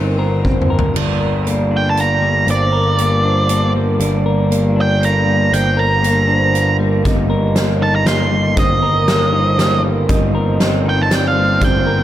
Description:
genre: post-rock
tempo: 118 BPM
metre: 3/4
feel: straight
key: G minor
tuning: A4 = 440 Hz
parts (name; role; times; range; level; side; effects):
- rich studio string section; sustained chords; 0.0-12.0 s; D3 to C4; -26 LUFS; right 3 dB; none
- clean electric guitar; arpeggios; 0.0-12.0 s; G2 to Bb4; -21 LUFS; left 4 dB; analog delay
- vibraphone with medium hard mallets; arpeggios; 0.0-12.0 s; Bb4 to Eb5; -23 LUFS; right 5 dB; analog delay
- fuzz picked electric bass; bass; 0.0-12.0 s; G1; -17 LUFS; equal; overdrive
- huge arena drum kit; drums; 0.4-11.7 s; crash cymbal, hi-hat, kick drum, snare drum, toms; -20 LUFS; equal; none
- octave-fuzz lead guitar; melody; 1.8-12.0 s; D5 to C6; -18 LUFS; right 2 dB; distortion, analog delay
room: light reverb, small room ambience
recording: none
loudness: -13 LUFS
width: side -12 dB against mid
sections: 1.0-12.0 A section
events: drum fill 0.4-1.0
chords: 0.0 Cm7/G; 1.0 Gm; 7.0 Eb/G; 10.1 Cm7/G

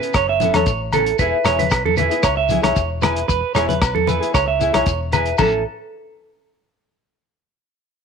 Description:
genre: highlife guitar band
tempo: 114 BPM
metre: 4/4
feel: straight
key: A major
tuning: A4 = 441 Hz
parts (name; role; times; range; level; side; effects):
- nylon-string guitar; accompaniment; 0.0-5.6 s; E3 to A4; -24 LUFS; left 13 dB; none
- clean electric guitar; arpeggios; 0.0-5.6 s; A4 to E5; -19 LUFS; right 11 dB; slapback echo
- warm soul drum kit; drums; 0.0-5.5 s; crash cymbal, hi-hat, kick drum, rim click; -22 LUFS; left 2 dB; none
- shekere; percussion; 0.0-5.6 s; none; -28 LUFS; left 11 dB; none
- hollow-body short-scale fingered electric bass; bass; 0.1-5.6 s; E1 to E2; -25 LUFS; left 2 dB; none
- agogo bells; percussion; 0.1-5.5 s; none; -25 LUFS; left 4 dB; none
- congas; percussion; 0.4-5.6 s; none; -25 LUFS; left 11 dB; none
room: light reverb, small room ambience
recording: 1960s-style stereo with parts hard left and right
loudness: -16 LUFS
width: side -6 dB against mid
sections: 0.0-5.4 A section; 5.4-7.5 B section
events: none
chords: 0.0 Aadd9; 1.2 E; 5.4 Aadd9

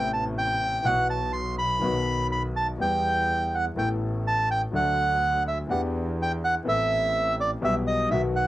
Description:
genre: tango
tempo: 124 BPM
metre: 4/4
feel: rubato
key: E minor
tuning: A4 = 440 Hz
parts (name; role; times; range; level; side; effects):
- bandoneon; melody; 0.0-8.5 s; D5 to C6; -24 LUFS; right 2 dB; cassette tape
- warm concert grand piano; accompaniment; 0.0-8.5 s; A1 to A4; -30 LUFS; left 3 dB; cassette tape
- clear double bass; bass; 0.0-8.5 s; A1 to E2; -31 LUFS; right 1 dB; none
room: moderate booth ambience, RT60 0.3 s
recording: home recording on cassette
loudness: -23 LUFS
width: side -15 dB against mid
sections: 0.0-8.5 A section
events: none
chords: 0.0 Amadd9; 0.8 Bsus4; 1.8 B; 2.8 Em; 3.8 Asus2; 4.7 D; 5.7 Em7; 6.7 Amadd9; 7.6 Em/B

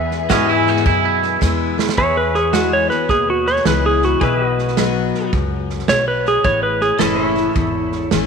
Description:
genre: honky-tonk and classic country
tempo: 107 BPM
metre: 4/4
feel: swing 66% on 8ths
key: E major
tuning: A4 = 438 Hz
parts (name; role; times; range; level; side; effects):
- pedal steel guitar; melody; 0.0-8.1 s; E4 to E5; -18 LUFS; right 2 dB; tape echo
- picked steel-string acoustic guitar; accompaniment; 0.0-8.3 s; E2 to F#4; -22 LUFS; left 12 dB; none
- rich studio string section; sustained chords; 0.0-2.0 s; E3 to G#4; -29 LUFS; left 4 dB; none
- upright bass; bass; 0.0-8.3 s; F#1 to G#2; -23 LUFS; equal; none
- natural country drum kit; drums; 0.1-8.3 s; hi-hat, kick drum, snare drum; -22 LUFS; right 5 dB; none
- twangy electric guitar; second line; 0.3-1.9 s; C#4 to F#4; -20 LUFS; right 10 dB; tape echo
- pedal steel guitar; sustained chords; 0.3-8.3 s; F#4 to E5; -24 LUFS; left 1 dB; none
room: moderate plate reverb, RT60 2.7 s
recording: 1960s-style stereo with parts hard left and right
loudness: -14 LUFS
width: side -6 dB against mid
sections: 0.0-2.0 A section; 2.0-8.3 B section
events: drum fill 1.4-2.0; pedal steel guitar solo 2.0-8.3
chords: 0.0 E; 4.2 B; 6.4 A

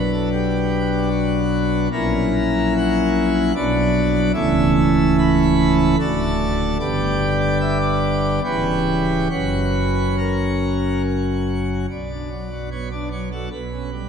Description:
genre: classical, chorale-style piece for pipe organ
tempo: 68-77 BPM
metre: 3/4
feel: rubato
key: B minor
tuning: A4 = 441 Hz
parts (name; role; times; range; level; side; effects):
- pipe organ, plenum; solo; 0.0-14.1 s; C#1 to B5; -17 LUFS; equal; none
room: wet church reverb, RT60 3.0 s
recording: none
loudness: -17 LUFS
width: side -7 dB against mid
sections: 0.0-11.9 A section; 11.9-14.1 B section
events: none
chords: 0.0 Bm; 1.9 F#7/A#; 3.6 Bm; 4.3 A/C#; 6.0 D; 6.8 G; 8.4 C#m7b5; 9.3 F#; 11.9 Bm; 13.5 C#7(b5, no3)/B

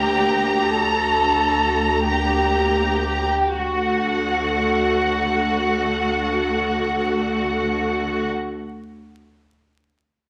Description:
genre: classical, slow romantic movement for string orchestra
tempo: 38-47 BPM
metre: 4/4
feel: rubato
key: D major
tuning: A4 = 440 Hz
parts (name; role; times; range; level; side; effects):
- rich studio violin section; melody; 0.0-8.3 s; F#5 to Bb5; -27 LUFS; equal; none
- warm studio violin section; second line; 0.0-8.3 s; F#4 to A4; -24 LUFS; equal; none
- warm studio viola section; accompaniment; 0.0-8.3 s; A3 to A4; -29 LUFS; equal; none
- warm studio cello section; bass; 0.0-8.3 s; D2; -28 LUFS; equal; none
room: wet large studio reverb, RT60 1.3 s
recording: vinyl crackle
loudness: -20 LUFS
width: mono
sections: 0.0-3.6 A section; 3.6-9.1 B section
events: slowing down 0.0-3.6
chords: 0.0 Gm/D; 3.6 D

